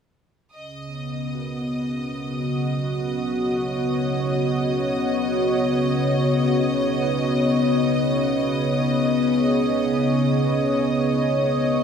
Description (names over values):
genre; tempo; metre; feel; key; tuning
ambient; free time; none; none; unclear; A4 = 440 Hz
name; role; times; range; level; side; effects
warm analog pad; sustained chords; 0.5-11.8 s; C#3 to D#5; -20 LUFS; equal; chorus, shimmer reverb
bright studio violin section; texture; 0.5-11.8 s; D#5 to D#6; -31 LUFS; equal; shimmer reverb
mellow tine electric piano; arpeggios; 1.3-11.8 s; D#4 to A#4; -40 LUFS; left 1 dB; none
room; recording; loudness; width
wet lush hall reverb, RT60 2.6 s; dreamy mix soaked in reverb; -20 LUFS; side -7 dB against mid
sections
0.5-11.8 A section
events
filter sweep on analog synth pad 0.5-11.8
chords
0.5 Badd9/C#